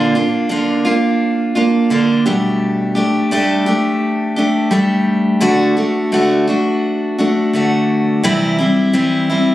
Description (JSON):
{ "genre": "rock", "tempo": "85 BPM", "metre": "4/4", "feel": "straight", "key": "D mixolydian", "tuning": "A4 = 440 Hz", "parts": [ { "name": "picked steel-string acoustic guitar", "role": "solo", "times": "0.0-9.5 s", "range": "Bb2 to G4", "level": "-13 LUFS", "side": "equal", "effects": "none" } ], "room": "light reverb", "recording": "recorded on a phone in the room, club reverb, compression", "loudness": "-13 LUFS", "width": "side -14 dB against mid", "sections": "0.0-9.5 A section", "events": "none", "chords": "0.0 Bb; 2.3 Gadd9/B; 5.4 D; 8.2 C" }